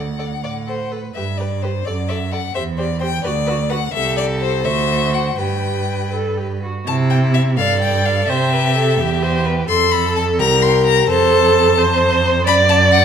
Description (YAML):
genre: quick classical-period movement for string quartet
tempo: 85 BPM (dotted quarters)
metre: 6/8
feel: rubato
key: G major, C major from 6.9 s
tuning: A4 = 440 Hz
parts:
  - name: warm violin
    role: melody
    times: 0.0-13.0 s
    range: C5 to C6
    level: -21 LUFS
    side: left 9 dB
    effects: none
  - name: rich violin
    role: second line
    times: 0.0-13.0 s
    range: E4 to D5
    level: -22 LUFS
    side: left 3 dB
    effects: none
  - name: rich viola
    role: accompaniment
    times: 0.0-13.0 s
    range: F#4 to D5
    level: -19 LUFS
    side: right 3 dB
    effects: none
  - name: rich cello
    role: bass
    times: 0.0-13.0 s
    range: C2 to C3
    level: -19 LUFS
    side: right 3 dB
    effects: none
room: moderate recital hall reverb, RT60 1.4 s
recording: minimal, uncompressed stereo recording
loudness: -15 LUFS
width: side -8 dB against mid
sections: 0.0-6.9 A section; 6.9-13.0 B section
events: none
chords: 0.0 D; 1.2 Gadd11; 1.9 D/F#; 2.6 C/E; 3.2 Bm/D; 3.9 Am7/C; 4.7 D7; 5.4 G; 6.9 C; 7.6 G5; 8.3 C; 9.7 F; 10.4 C5; 11.1 F; 12.5 D/F#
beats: 0.43 | 1.15 1.86 | 2.55 3.25 | 3.94 4.66 | 5.39 6.13 | 6.87 7.58 | 8.29 8.99 | 9.69 10.39 | 11.09 11.78 | 12.47